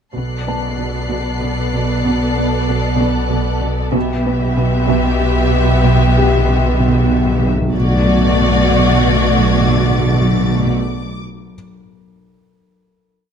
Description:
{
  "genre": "cinematic, suspense film score",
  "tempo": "95 BPM",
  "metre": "3/4",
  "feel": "straight",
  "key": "B phrygian",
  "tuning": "A4 = 440 Hz",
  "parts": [
    { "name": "warm symphonic violin section", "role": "melody", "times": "0.1-10.7 s", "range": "D5 to E5", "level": "-23 LUFS", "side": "left 4 dB", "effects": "none" },
    { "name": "dark symphonic violin section", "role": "second line", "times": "0.1-10.7 s", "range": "F#4 to A4", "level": "-23 LUFS", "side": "left 2 dB", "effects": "none" },
    { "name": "rich symphonic cello section", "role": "bass", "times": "0.1-10.7 s", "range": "B2", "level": "-22 LUFS", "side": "right 2 dB", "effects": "none" },
    { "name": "warm symphonic violin section", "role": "texture", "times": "0.1-11.2 s", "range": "B5 to C7", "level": "-29 LUFS", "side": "left 4 dB", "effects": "none" },
    { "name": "rich symphonic viola section", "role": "accompaniment", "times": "0.2-10.7 s", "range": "A3 to B3", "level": "-23 LUFS", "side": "equal", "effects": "none" },
    { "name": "dark symphonic cello section", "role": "riff", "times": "0.2-7.6 s", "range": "B2 to B3", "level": "-21 LUFS", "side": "right 3 dB", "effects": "none" },
    { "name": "dark symphonic double bass section", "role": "bass", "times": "0.2-10.7 s", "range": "B1", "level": "-20 LUFS", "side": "right 3 dB", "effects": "none" },
    { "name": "pure sine sub bass", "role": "drone", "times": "0.2-10.7 s", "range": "B1", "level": "-22 LUFS", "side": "left 1 dB", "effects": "none" },
    { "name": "felt-muted upright piano", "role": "texture", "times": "0.5-7.8 s", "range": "G4 to A5", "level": "-26 LUFS", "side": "left 6 dB", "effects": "none" },
    { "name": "timpani", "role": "percussion", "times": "3.9-10.7 s", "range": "B2", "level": "-20 LUFS", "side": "left 1 dB", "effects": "none" }
  ],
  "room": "moderate scoring stage reverb, RT60 1.7 s",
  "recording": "none",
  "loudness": "-13 LUFS",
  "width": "side -7 dB against mid",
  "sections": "0.2-7.7 A section; 7.7-11.5 final chord",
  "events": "timpani fill 4.0-7.7",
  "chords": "0.2 Bm7"
}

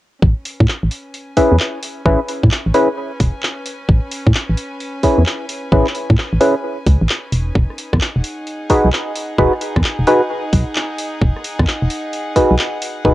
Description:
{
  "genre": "UK garage, two-step garage",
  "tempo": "131 BPM",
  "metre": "4/4",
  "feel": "swing 65% on 16ths",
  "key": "A lydian",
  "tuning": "A4 = 440 Hz",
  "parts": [
    { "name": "organ-like FM bass", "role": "bass", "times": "0.2-13.1 s", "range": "E1 to A2", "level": "-14 LUFS", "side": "equal", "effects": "none" },
    { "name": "electronic kick drum", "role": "drums", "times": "0.2-13.1 s", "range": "none", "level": "-16 LUFS", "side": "equal", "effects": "none" },
    { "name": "rich chamber string section", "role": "texture", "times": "0.2-13.1 s", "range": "C#4 to G#5", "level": "-29 LUFS", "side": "equal", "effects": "sidechain pumping, cassette tape" },
    { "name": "garage drum kit", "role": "drums", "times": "0.5-12.9 s", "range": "handclaps, hi-hat, rim click", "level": "-22 LUFS", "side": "equal", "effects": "none" },
    { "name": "percussive organ stab", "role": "stabs", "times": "1.4-13.1 s", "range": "C#4 to B4", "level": "-15 LUFS", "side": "equal", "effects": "analog chorus, cassette tape, tape echo" }
  ],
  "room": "light reverb, digital ambience",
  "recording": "home recording on cassette",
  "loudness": "-14 LUFS",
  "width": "side -16 dB against mid",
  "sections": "0.2-13.1 A section",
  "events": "fade-in on string section 0.2-13.1",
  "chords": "0.2 Amaj9; 7.3 Emaj9"
}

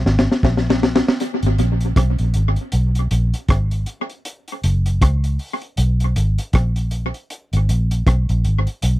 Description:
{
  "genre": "lovers rock reggae",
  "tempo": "79 BPM",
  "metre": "4/4",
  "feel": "swing 59% on 16ths",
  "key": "G# minor",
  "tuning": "A4 = 440 Hz",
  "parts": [
    { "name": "vintage muted fingered electric bass", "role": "bass", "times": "0.0-9.0 s", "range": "F#1 to C#2", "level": "-17 LUFS", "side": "equal", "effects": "none" },
    { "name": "crunchy breakbeat drum kit", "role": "drums", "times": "0.1-9.0 s", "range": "hi-hat, kick drum, rim click, snare drum", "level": "-19 LUFS", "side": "equal", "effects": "tape echo" }
  ],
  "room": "little or no reverb",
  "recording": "dry, close 1970s-style studio recording",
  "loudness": "-16 LUFS",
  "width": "side -16 dB against mid",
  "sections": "0.0-9.0 A section",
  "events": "drum fill 0.0-1.2",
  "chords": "none"
}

